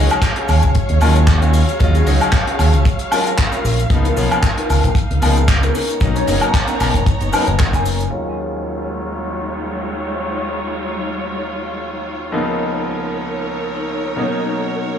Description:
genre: nu-disco, nu disco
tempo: 114 BPM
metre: 4/4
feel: swing 55% on 16ths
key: Eb minor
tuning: A4 = 440 Hz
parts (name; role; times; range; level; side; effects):
- bright concert grand piano; accompaniment; 0.0-15.0 s; Db2 to F4; -24 LUFS; left 1 dB; sidechain pumping, low-pass filter, analog delay
- rich studio string section; sustained chords; 0.0-15.0 s; Gb3 to A#5; -24 LUFS; equal; sidechain pumping, low-pass filter
- mellow electric guitar; riff; 0.0-8.1 s; Cb4 to Ab5; -24 LUFS; equal; analog chorus, analog delay
- fingered electric bass with an envelope filter; bass; 0.0-8.1 s; F#1 to Eb2; -15 LUFS; equal; none
- damped 70s drum kit; drums; 0.1-8.1 s; cabasa, handclaps, hi-hat, woodblock; -20 LUFS; left 1 dB; none
- kick drum; drums; 0.2-7.8 s; none; -15 LUFS; equal; none
room: small room ambience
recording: dry, gritty hardware recording, transformer saturation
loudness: -15 LUFS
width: side -8 dB against mid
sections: 0.0-8.1 A section; 8.1-15.0 B section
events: clean electric guitar fill 7.1-8.1; filter sweep on grand piano 8.1-15.0; filter sweep on string section 8.1-15.0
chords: 0.0 Ebm11; 3.9 Db13; 5.8 Bmaj9; 8.1 Ebm11; 12.3 Db13; 14.2 Bmaj9

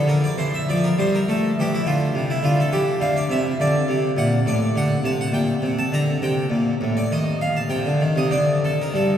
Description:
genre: classical, baroque-style suite movement for harpsichord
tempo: 102 BPM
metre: 3/4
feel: rubato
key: unclear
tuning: A4 = 440 Hz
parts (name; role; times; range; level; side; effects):
- harpsichord; solo; 0.0-9.2 s; G2 to Bb5; -18 LUFS; equal; none
room: wet cathedral reverb, RT60 6.0 s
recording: heard from further back in the room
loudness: -18 LUFS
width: side -9 dB against mid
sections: 0.0-9.2 A section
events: none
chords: 0.1 Dm; 1.3 A5; 1.9 C69; 3.6 D5; 5.3 Bbmaj13; 6.5 Bbmaj7; 7.1 N.C.; 7.7 Cmadd9; 8.3 N.C.

